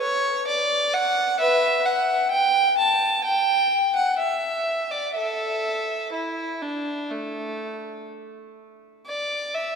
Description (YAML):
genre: classical, baroque-style suite movement for unaccompanied violin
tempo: 60-66 BPM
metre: 4/4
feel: rubato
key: unclear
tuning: A4 = 440 Hz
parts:
  - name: rich violin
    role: solo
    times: 0.0-9.8 s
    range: A3 to A5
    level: -21 LUFS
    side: equal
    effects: none
room: wet church reverb, RT60 3.5 s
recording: minimal, uncompressed stereo recording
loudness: -21 LUFS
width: side -6 dB against mid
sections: 0.0-9.8 A section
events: none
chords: none